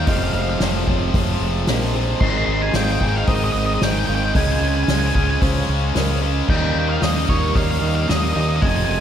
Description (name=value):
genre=post-rock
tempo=112 BPM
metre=4/4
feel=straight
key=unclear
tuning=A4 = 440 Hz
part: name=octave-fuzz lead guitar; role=melody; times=0.0-9.0 s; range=Db5 to C6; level=-25 LUFS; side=left 1 dB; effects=distortion, analog delay
part: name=airy breathy pad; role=sustained chords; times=0.0-9.0 s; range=C4 to F5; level=-32 LUFS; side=equal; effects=chorus
part: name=felt-muted upright piano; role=arpeggios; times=0.0-9.0 s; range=Bb4 to F5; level=-31 LUFS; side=right 2 dB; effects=lush chorus, analog delay
part: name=thick fuzz guitar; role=riff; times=0.0-9.0 s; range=F2 to F4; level=-25 LUFS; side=right 9 dB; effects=distortion
part: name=tight distorted guitar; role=riff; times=0.0-9.0 s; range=F2 to Eb4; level=-25 LUFS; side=left 8 dB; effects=distortion
part: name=growling fingered electric bass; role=bass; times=0.0-9.0 s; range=F1 to Eb2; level=-22 LUFS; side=equal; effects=overdrive
part: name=soft-mallet drum kit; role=drums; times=0.1-8.8 s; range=crash cymbal, hi-hat, kick drum, snare drum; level=-22 LUFS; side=equal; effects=none
room=moderate lush hall reverb, RT60 1.9 s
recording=dreamy mix soaked in reverb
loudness=-16 LUFS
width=side -9 dB against mid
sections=0.0-9.0 A section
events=none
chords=0.1 Fm7; 2.2 Abadd9; 4.3 Dbmaj7; 6.5 Eb7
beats=| 0.08 0.61 1.14 1.68 | 2.21 2.75 3.28 3.81 | 4.35 4.88 5.42 5.95 | 6.49 7.02 7.56 8.09 | 8.63